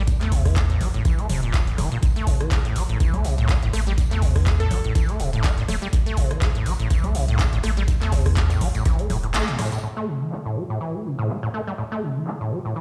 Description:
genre	acid house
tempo	123 BPM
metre	4/4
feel	swing 55% on 16ths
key	A phrygian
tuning	A4 = 442 Hz
part	acid bass, saw	riff	0.0-12.8 s	A1 to A3	-28 LUFS	equal	overdrive, analog chorus, sidechain pumping, tape echo
part	warm sub bass	bass	0.0-9.4 s	E1 to E2	-26 LUFS	equal	sidechain pumping
part	booming analog drum machine	drums	0.1-12.4 s	congas, handclaps, hi-hat, rim click	-33 LUFS	equal	low-pass filter on hats, low-pass filter on snare, low-pass filter on perc, low-pass filter on room
part	electronic kick drum	drums	0.1-9.0 s	none	-23 LUFS	equal	none
part	tambourine and snare drum	drums	0.1-9.8 s	none	-44 LUFS	equal	high-pass filter on snare, high-pass filter on perc, high-pass filter on room
part	glassy wavetable pluck	melody	4.6-5.3 s	A4	-36 LUFS	equal	chorus, tape echo
room	light reverb, digital ambience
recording	played on a big sound system in a bare room, large studio reverb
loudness	-22 LUFS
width	mono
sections	0.0-9.8 A section; 9.8-12.8 B section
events	drop 0.0-9.8; kick drops out 9.3-9.8; band accent 9.3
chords	0.0 A5

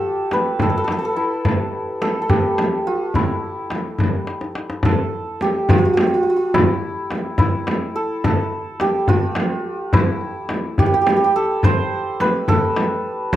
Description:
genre	Persian modal ensemble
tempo	71 BPM (dotted quarters)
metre	6/8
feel	straight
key	E dastgah shur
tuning	A4 = 440 Hz
part	santur	melody	0.0-13.4 s	E4 to C5	-20 LUFS	right 1 dB	none
part	frame drum	percussion	0.3-13.4 s	none	-21 LUFS	right 1 dB	none
part	tombak	percussion	0.3-13.4 s	none	-22 LUFS	left 2 dB	none
room	wet small room ambience, RT60 0.5 s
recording	dark, warm production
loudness	-17 LUFS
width	side -12 dB against mid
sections	0.0-4.8 A section; 4.8-13.4 B section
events	drum fill 4.3-4.8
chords	none

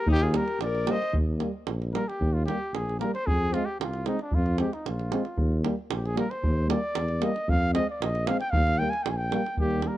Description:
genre	balkan folk, Balkan brass band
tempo	114 BPM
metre	2/4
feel	straight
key	Eb major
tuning	A4 = 440 Hz
part	mellow trumpet	melody	0.0-10.0 s	D4 to Ab5	-30 LUFS	equal	none
part	warm alto saxophone	second line	0.0-1.2 s	Eb4 to C5	-32 LUFS	left 5 dB	none
part	mellow tuba	bass	0.1-9.9 s	Bb1 to F2	-28 LUFS	equal	none
part	davul	percussion	0.1-10.0 s	none	-29 LUFS	right 2 dB	none
part	warm euphonium	accompaniment	0.3-10.0 s	Bb3 to C4	-32 LUFS	left 5 dB	none
part	warm trombone	accompaniment	0.3-10.0 s	G3 to Ab3	-34 LUFS	right 6 dB	none
room	studio ambience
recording	dry, close 1970s-style studio recording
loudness	-24 LUFS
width	side -14 dB against mid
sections	0.0-1.1 A section; 1.1-9.6 B section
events	trumpet solo 1.1-9.6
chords	0.1 Eb; 3.3 Fm; 5.4 Eb; 7.5 Fm; 8.5 Eb

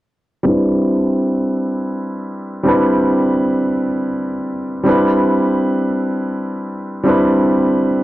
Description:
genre	amapiano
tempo	free time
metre	none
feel	none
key	C major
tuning	A4 = 440 Hz
part	warm grand piano	accompaniment	0.4-8.0 s	G3 to B4	-14 LUFS	equal	low-pass filter
room	small room ambience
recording	dry, gritty hardware recording, cassette tape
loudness	-14 LUFS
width	side -16 dB against mid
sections	0.5-4.9 A section; 4.9-8.0 B section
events	filter sweep on grand piano 0.5-4.9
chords	0.5 Cmaj9

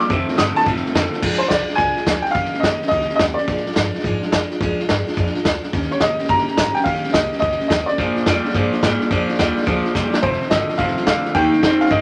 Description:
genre	rockabilly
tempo	213 BPM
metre	4/4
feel	swing 65% on 8ths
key	Bb mixolydian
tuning	A4 = 444 Hz
part	warm upright piano	melody	0.0-12.0 s	C5 to Eb6	-22 LUFS	equal	none
part	picked steel-string acoustic guitar	accompaniment	0.0-12.0 s	F2 to G4	-27 LUFS	equal	none
part	electric guitar through a small old amp	riff	0.0-1.2, 8.0-12.0 s	F2 to C4	-22 LUFS	equal	none
part	upright bass	bass	0.0-12.0 s	F1 to Bb2	-30 LUFS	equal	none
part	vintage drum kit	drums	0.0-12.0 s	crash cymbal, hi-hat, kick drum, snare drum	-23 LUFS	equal	none
room	moderate studio reverb, RT60 0.5 s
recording	none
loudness	-19 LUFS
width	mono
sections	0.0-1.2 A section; 1.2-12.0 B section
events	upright piano solo 0.0-1.2; drum fill 10.0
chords	0.1 F7; 1.2 Bb7; 2.4 Eb7; 3.5 Bb7; 5.7 Eb7; 8.0 Bb7; 10.2 F7; 11.4 Eb7

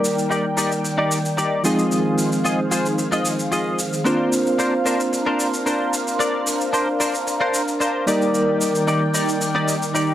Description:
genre	nu-disco, nu disco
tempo	112 BPM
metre	4/4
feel	straight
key	Bb mixolydian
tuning	A4 = 440 Hz
part	reed electric piano	accompaniment	0.0-10.1 s	F3 to D5	-22 LUFS	equal	fast tremolo, analog delay
part	lush unison pad	sustained chords	0.0-10.1 s	Eb3 to G5	-23 LUFS	equal	chorus, phaser
part	direct-recorded clean electric guitar	riff	0.0-10.1 s	D4 to Eb5	-24 LUFS	left 1 dB	analog chorus, low-pass filter, analog delay
part	shaker	drums	0.0-10.1 s	none	-27 LUFS	equal	none
room	light reverb, digital ambience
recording	dry, gritty hardware recording, transformer saturation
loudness	-18 LUFS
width	side -12 dB against mid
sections	0.0-10.1 A section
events	none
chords	0.0 Ebmaj7; 1.6 Fm7; 4.1 Bbadd9; 8.1 Ebmaj7

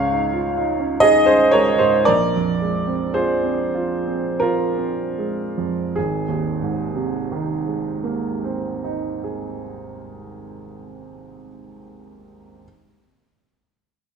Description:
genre	classical, impressionist solo piano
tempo	36-71 BPM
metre	3/4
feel	rubato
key	Ab major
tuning	A4 = 441 Hz
part	warm baby grand piano	solo	0.0-12.7 s	Ab1 to F5	-18 LUFS	right 2 dB	none
room	wet recital hall reverb, RT60 1.6 s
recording	minimal, uncompressed stereo recording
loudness	-18 LUFS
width	side -6 dB against mid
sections	0.0-6.0 A section; 6.0-10.3 B section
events	slowing down 0.0-6.0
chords	0.0 Dbadd9; 2.1 Bb9; 6.0 Abadd9

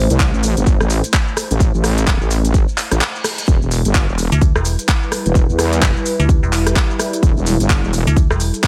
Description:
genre	bass house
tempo	128 BPM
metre	4/4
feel	swing 60% on 16ths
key	E minor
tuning	A4 = 439 Hz
part	sweeping resonant pad	sustained chords	0.0-8.7 s	G3 to C5	-27 LUFS	equal	chorus, sidechain pumping
part	wobble bass	bass	0.0-8.0 s	E1 to E2	-19 LUFS	equal	chorus, tube saturation, sidechain pumping
part	garage drum kit	drums	0.1-8.7 s	handclaps, hi-hat, rim click, shaker	-23 LUFS	equal	none
part	electronic kick drum	drums	0.2-8.7 s	none	-17 LUFS	equal	none
part	reverse cymbal	sound effects	3.0-3.5 s	none	-32 LUFS	equal	none
part	metallic FM bass	bass	4.3-8.5 s	E1 to D2	-18 LUFS	equal	tube saturation, sidechain pumping
room	digital ambience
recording	none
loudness	-16 LUFS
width	mono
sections	0.0-8.7 A section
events	reverse cymbal 3.0-3.5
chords	0.0 Am; 3.5 Em

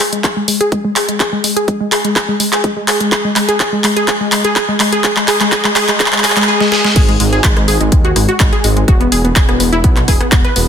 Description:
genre	progressive house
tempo	125 BPM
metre	4/4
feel	straight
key	G# minor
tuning	A4 = 440 Hz
part	wide unison pluck	arpeggios	0.0-10.6 s	G#3 to B4	-14 LUFS	equal	sidechain pumping, ping-pong delay
part	pop drum kit	drums	0.0-10.7 s	crash cymbal, handclaps, hi-hat, rim click, snare drum	-15 LUFS	equal	overdrive, high-pass filter on hats, high-pass filter on snare, high-pass filter on cymbals, high-pass filter on room
part	electronic kick drum	drums	0.2-10.4 s	none	-13 LUFS	equal	high-pass filter on kick
part	dark detuned saw bass	bass	7.0-10.7 s	E1 to D#2	-16 LUFS	equal	sidechain pumping
room	moderate digital room reverb, RT60 1.1 s, digital ambience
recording	dense, heavily limited modern master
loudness	-10 LUFS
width	side -8 dB against mid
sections	0.0-7.0 A section; 7.0-10.7 B section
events	build-up 0.0-7.0; drum fill 0.0-6.5, 6.6-7.0; filter sweep on synth pluck 0.0-7.0; drop 7.0-10.7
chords	0.0 N.C.; 7.0 G#5; 8.9 E5

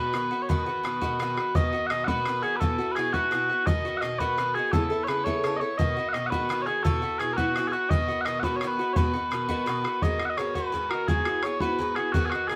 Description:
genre	celtic folk, Celtic jig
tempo	113 BPM (dotted quarters)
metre	6/8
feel	straight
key	B mixolydian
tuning	A4 = 440 Hz
part	mellow small bagpipes	melody	0.0-12.6 s	F#4 to F#5	-29 LUFS	equal	none
part	Irish bouzouki	accompaniment	0.0-12.6 s	G#2 to A4	-32 LUFS	equal	none
part	bodhran	percussion	0.1-12.6 s	none	-31 LUFS	equal	none
room	moderate studio reverb, RT60 0.7 s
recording	band playing live in one room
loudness	-26 LUFS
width	mono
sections	0.0-1.6 A section; 1.6-10.0 A section; 10.0-12.6 B section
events	none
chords	0.0 B; 2.6 Esus2; 3.7 B; 4.7 Aadd9; 5.8 B; 6.8 Esus2; 7.9 B; 10.0 G#m7; 11.1 Eadd9

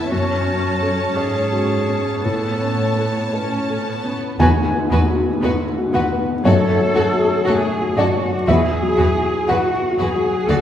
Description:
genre	cinematic, emotional film score for orchestra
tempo	54-61 BPM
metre	4/4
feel	rubato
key	unclear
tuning	A4 = 440 Hz
part	rich studio violin section	melody	0.0-10.6 s	A4 to A5	-29 LUFS	left 1 dB	none
part	bright clarinet	second line	0.0-3.3 s	E4 to A4	-25 LUFS	right 2 dB	none
part	warm studio violin section	second line	0.0-10.6 s	F#4 to C#5	-27 LUFS	left 2 dB	none
part	felt-muted upright piano	accompaniment	0.0-10.6 s	C#2 to G#5	-20 LUFS	left 2 dB	none
part	warm studio viola section	accompaniment	0.0-10.6 s	F#3 to C#4	-28 LUFS	right 2 dB	none
part	warm studio cello section	bass	0.0-10.6 s	E2 to A4	-22 LUFS	right 1 dB	none
part	warm studio double bass section	bass	4.4-10.6 s	D2 to F#2	-22 LUFS	right 1 dB	none
part	tam-tam	percussion	4.4-8.4 s	none	-26 LUFS	left 2 dB	none
room	wet scoring stage reverb, RT60 1.7 s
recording	heard from further back in the room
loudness	-16 LUFS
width	side -10 dB against mid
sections	0.0-4.4 A section; 4.4-10.6 A section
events	band accent 4.4-5.4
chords	0.1 F#m; 2.2 Aadd9; 4.4 Esus2; 6.5 F#m; 8.5 Esus2

